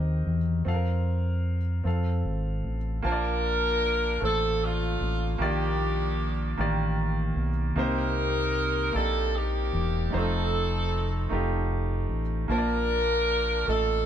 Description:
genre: slow gospel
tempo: 51 BPM (dotted quarters)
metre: 6/8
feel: straight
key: Bb major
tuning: A4 = 440 Hz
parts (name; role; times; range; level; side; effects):
- clear upright piano; accompaniment; 0.0-14.1 s; Bb2 to A5; -30 LUFS; right 2 dB; none
- fingered electric bass; bass; 0.0-14.1 s; E1 to F2; -28 LUFS; equal; none
- clear saxophone section; melody; 3.0-14.1 s; A3 to Bb4; -28 LUFS; equal; none
room: moderate studio reverb, RT60 0.6 s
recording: band playing live in one room, faint mains hum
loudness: -24 LUFS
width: side -9 dB against mid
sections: 0.0-3.0 A section; 3.0-14.1 B section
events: none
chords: 0.0 Cm7/Eb; 0.7 Fsus4; 1.9 F; 3.0 Bbmaj7; 5.4 Ebmaj7/Bb; 7.8 Cm7; 10.1 F7; 12.5 Bbmaj7

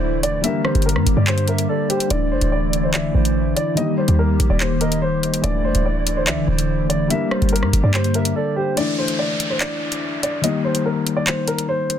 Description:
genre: hip hop, drill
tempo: 144 BPM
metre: 4/4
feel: half-time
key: unclear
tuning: A4 = 440 Hz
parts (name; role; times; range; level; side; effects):
- dark grand piano; melody; 0.0-12.0 s; G4 to E5; -24 LUFS; equal; low-pass filter, digital delay
- hollow clarinet-like synth lead; second line; 0.0-8.8 s; C5 to E5; -29 LUFS; right 7 dB; chorus, digital delay
- felt-muted upright piano; accompaniment; 0.0-12.0 s; D3 to Bb4; -25 LUFS; left 5 dB; low-pass filter
- hollow soft pad; sustained chords; 0.0-8.8 s; D3 to G4; -23 LUFS; left 1 dB; ensemble chorus
- short 808-style bass; bass; 0.0-8.3 s; C1 to G2; -20 LUFS; equal; none
- drill drum kit; drums; 0.2-12.0 s; handclaps, hi-hat, rim click; -23 LUFS; equal; overdrive
- downlifter; sound effects; 8.8-12.0 s; none; -28 LUFS; equal; none
room: little or no reverb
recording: dense, heavily limited modern master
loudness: -17 LUFS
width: side -9 dB against mid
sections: 0.0-8.8 A section; 8.8-12.0 B section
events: break 8.4-8.8; kick muted 8.8-12.0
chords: 0.4 Gm; 2.1 Dsus2; 3.8 Eb; 5.4 Dsus2; 7.1 Gm; 8.8 Dsus2; 10.4 Eb

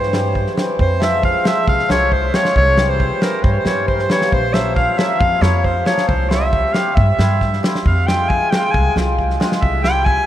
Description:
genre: klezmer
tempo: 136 BPM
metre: 4/4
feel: straight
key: C phrygian dominant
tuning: A4 = 443 Hz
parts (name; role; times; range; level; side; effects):
- bright clarinet; melody; 0.0-10.3 s; Bb4 to Ab5; -19 LUFS; equal; none
- accordion; second line; 0.0-10.3 s; Bb4 to Ab5; -24 LUFS; right 2 dB; none
- cimbalom; accompaniment; 0.0-10.3 s; E3 to G4; -22 LUFS; left 2 dB; none
- upright bass; bass; 0.0-10.2 s; Bb1 to G2; -19 LUFS; equal; none
- warm soul drum kit; drums; 0.0-10.2 s; kick drum, snare drum; -20 LUFS; equal; none
room: moderate cathedral reverb, RT60 6.5 s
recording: in a vast, echoing space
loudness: -14 LUFS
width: side -12 dB against mid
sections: 0.8-10.3 A section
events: none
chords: 0.0 C; 0.8 Fm; 2.5 C; 4.3 Bbm; 6.1 C; 7.8 Fm; 9.6 C

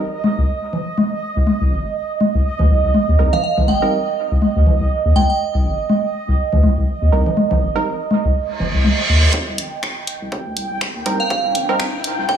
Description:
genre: minimal techno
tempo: 122 BPM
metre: 4/4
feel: swing 57% on 16ths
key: C minor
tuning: A4 = 439 Hz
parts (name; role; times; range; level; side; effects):
- bubbling stepped-filter texture; texture; 0.0-12.4 s; Eb5 to G5; -23 LUFS; right 7 dB; chorus, built-in reverb, sidechain pumping
- congas; percussion; 0.2-9.0 s; none; -20 LUFS; left 2 dB; overdrive, dub echo
- saturated sub bass; bass; 0.4-12.3 s; G1 to Eb2; -16 LUFS; left 1 dB; sidechain pumping, high-pass filter
- filtered dub chord stab; stabs; 3.2-3.9, 7.1-7.9, 11.1-11.8 s; G3 to Bb4; -24 LUFS; right 3 dB; chorus, cassette tape, dub echo
- glassy synth bell; melody; 3.3-5.4, 11.2-12.4 s; F5 to G5; -22 LUFS; right 2 dB; chorus, phaser, dub echo
- reverse cymbal and riser; sound effects; 8.6-12.4 s; none; -23 LUFS; right 2 dB; none
- electronic kick drum; drums; 9.3-12.4 s; none; -27 LUFS; equal; high-pass filter on kick
- garage drum kit; drums; 9.6-12.2 s; finger snaps, hi-hat; -24 LUFS; left 1 dB; low-pass filter on hats, low-pass filter on snare
room: moderate plate reverb, RT60 1.4 s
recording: small room ambience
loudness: -15 LUFS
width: side -9 dB against mid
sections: 0.0-9.3 A section; 9.3-12.4 B section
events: filter sweep on synth stab 0.0-9.3; reverse cymbal 8.6-9.3; build-up 9.3-12.4; riser 9.3-12.4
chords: 0.0 Cm; 9.3 Cm7

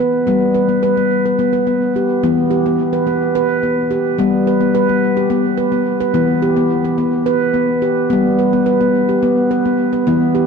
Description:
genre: world meditative, meditative tuned percussion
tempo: 215 BPM (eighths)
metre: 7/8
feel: straight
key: unclear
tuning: A4 = 440 Hz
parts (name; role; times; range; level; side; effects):
- handpan; solo; 0.0-10.5 s; E3 to B4; -13 LUFS; equal; diffuse ambient delay
room: wet cathedral reverb, RT60 5.0 s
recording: dark, warm production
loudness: -13 LUFS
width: side -5 dB against mid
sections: 0.0-2.2 A section; 2.2-10.5 B section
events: none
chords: 0.3 G; 2.2 Em; 4.2 G; 6.1 Em; 8.1 G

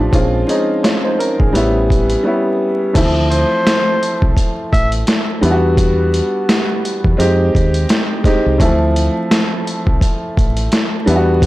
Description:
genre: hip hop, boom-bap hip-hop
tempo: 85 BPM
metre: 4/4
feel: swing 60% on 16ths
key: D dorian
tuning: A4 = 440 Hz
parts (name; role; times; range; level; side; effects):
- clear upright piano; accompaniment; 0.0-11.5 s; E3 to Db5; -16 LUFS; equal; high-pass filter, low-pass filter
- deep dub fingered electric bass; bass; 0.0-11.5 s; Ab1 to F2; -16 LUFS; equal; transformer saturation
- boom bap sampler-style drum kit; drums; 0.1-11.5 s; crash cymbal, hi-hat, kick drum, snare drum; -16 LUFS; equal; none
- breathy tenor saxophone; melody; 3.3-4.9 s; C5 to E5; -19 LUFS; equal; high-pass filter, low-pass filter, analog delay
room: digital ambience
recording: dry, gritty hardware recording, vinyl crackle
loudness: -12 LUFS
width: side -17 dB against mid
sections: 0.0-3.0 A section; 3.0-11.5 B section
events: break 2.2-3.0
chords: 0.1 Bbm7; 1.5 A7; 3.0 Dm9; 5.4 Em9; 7.2 Fm9; 8.6 Dm9

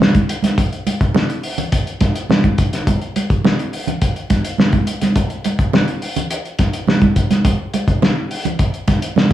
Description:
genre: funk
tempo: 105 BPM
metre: 4/4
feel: straight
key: none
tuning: none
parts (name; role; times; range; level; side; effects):
- cloth-damped thuddy drum kit; drums; 0.0-9.3 s; hi-hat, kick drum, snare drum; -16 LUFS; left 1 dB; none
- congas; percussion; 0.0-9.3 s; none; -18 LUFS; right 3 dB; none
room: light reverb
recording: small room reverb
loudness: -15 LUFS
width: side -12 dB against mid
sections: 0.0-9.3 A section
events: none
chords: none

